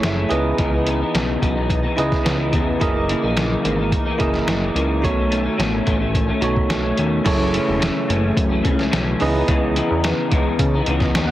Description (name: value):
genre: indie pop, bedroom pop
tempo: 108 BPM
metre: 4/4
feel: straight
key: unclear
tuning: A4 = 440 Hz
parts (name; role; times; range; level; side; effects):
- bell-like tine electric piano; accompaniment; 0.0-11.3 s; D#4 to F#5; -23 LUFS; right 3 dB; cassette tape
- electric guitar through a small old amp; accompaniment; 0.0-11.3 s; F#2 to E4; -22 LUFS; left 2 dB; ensemble chorus, warbly pitch drift
- fat analog bass; bass; 0.0-11.3 s; E1 to C#3; -23 LUFS; equal; none
- lo-fi sampler-style drum kit; drums; 0.0-11.3 s; crash cymbal, hi-hat, kick drum, snare drum; -22 LUFS; equal; none
room: moderate spring reverb, RT60 1.9 s, digital ambience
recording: heavily compressed radio sound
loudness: -17 LUFS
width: side -14 dB against mid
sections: 0.0-7.3 A section; 7.3-11.3 B section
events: none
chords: 0.3 C#m9; 2.8 F#13; 5.0 B9; 7.3 F#m7; 9.2 C#m9